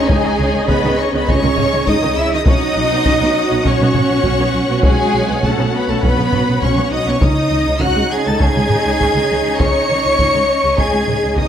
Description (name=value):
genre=cinematic, epic orchestral film score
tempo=101 BPM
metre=4/4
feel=straight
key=unclear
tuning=A4 = 440 Hz
part: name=warm symphonic violin section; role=melody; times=0.0-11.5 s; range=G#5 to C#7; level=-23 LUFS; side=left 2 dB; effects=none
part: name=large flute ensemble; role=second line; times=0.0-11.5 s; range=G#4 to C#6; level=-24 LUFS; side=equal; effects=none
part: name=rich symphonic violin section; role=second line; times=0.0-11.5 s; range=G#4 to C#6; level=-25 LUFS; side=left 2 dB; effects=none
part: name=warm symphonic viola section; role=accompaniment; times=0.0-11.5 s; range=C#3 to F#4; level=-22 LUFS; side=right 1 dB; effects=none
part: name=dark studio string section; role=sustained chords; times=0.0-11.5 s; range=C#4 to F#5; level=-22 LUFS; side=equal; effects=none
part: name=mellow French horn section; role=sustained chords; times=0.0-11.5 s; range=G#3 to C#5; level=-22 LUFS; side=left 3 dB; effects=none
part: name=rich symphonic cello section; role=bass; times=0.0-11.5 s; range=G#3 to C#5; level=-22 LUFS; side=right 3 dB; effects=none
part: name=warm symphonic double bass section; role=bass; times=0.1-11.4 s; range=B1 to C#2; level=-21 LUFS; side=right 2 dB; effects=none
part: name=taiko ensemble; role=drums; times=0.1-11.5 s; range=none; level=-18 LUFS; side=equal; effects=none
part: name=timpani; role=percussion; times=7.2-8.1 s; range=C#3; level=-24 LUFS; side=left 1 dB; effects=none
room=moderate scoring stage reverb, RT60 1.9 s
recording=none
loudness=-13 LUFS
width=side -9 dB against mid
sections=0.0-11.5 A section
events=none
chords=0.0 C#sus2; 2.5 Bsus2; 7.2 C#sus2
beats=| 0.09 0.69 1.28 1.87 | 2.47 3.06 3.65 4.25 | 4.84 5.44 6.03 6.62 | 7.22 7.81 8.41 9.00 | 9.60 10.19 10.78 11.38